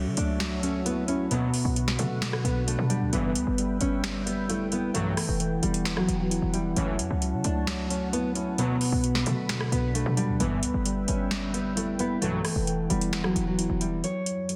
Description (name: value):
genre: hip hop, trap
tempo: 132 BPM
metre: 4/4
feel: half-time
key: F# phrygian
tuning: A4 = 440 Hz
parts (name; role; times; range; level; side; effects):
- nylon-string guitar; melody; 0.0-14.6 s; F#3 to C#5; -33 LUFS; equal; low-pass filter, digital delay
- mellow tine electric piano; accompaniment; 0.0-14.6 s; B2 to E4; -32 LUFS; equal; low-pass filter
- dark analog pad; sustained chords; 0.0-14.6 s; F#2 to B5; -40 LUFS; equal; chorus
- short 808-style bass; bass; 0.0-14.0 s; E1 to C#3; -34 LUFS; equal; none
- booming analog drum machine; drums; 0.2-14.6 s; finger snaps, hi-hat, rim click, snare drum; -34 LUFS; equal; overdrive
- analog synth brass; stabs; 1.3-12.4 s; B1 to F#3; -36 LUFS; equal; chorus
room: light reverb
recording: dense, heavily limited modern master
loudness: -27 LUFS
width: mono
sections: 0.0-14.0 A section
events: none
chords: 0.0 F#m7; 1.3 Bm; 3.1 G6; 4.9 Emadd9; 6.8 F#m7; 8.6 Bm; 10.4 G6; 12.2 Emadd9; 14.0 F#m7